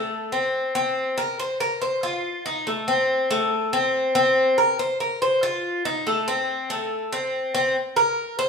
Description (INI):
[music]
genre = latin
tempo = 141 BPM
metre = 4/4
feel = straight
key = unclear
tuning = A4 = 440 Hz
[part]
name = Cuban tres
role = solo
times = 0.0-8.5 s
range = A3 to C5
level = -21 LUFS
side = left 1 dB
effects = none
[sound]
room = wet large studio reverb, RT60 1.1 s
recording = band playing live in one room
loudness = -21 LUFS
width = side -5 dB against mid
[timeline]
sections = 0.0-7.8 A section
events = none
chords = none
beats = 0.10 0.53 | 0.96 1.39 1.81 2.24 | 2.66 3.09 3.52 3.94 | 4.37 4.79 5.22 5.64 | 6.07 6.49 6.91 7.34 | 7.76 8.18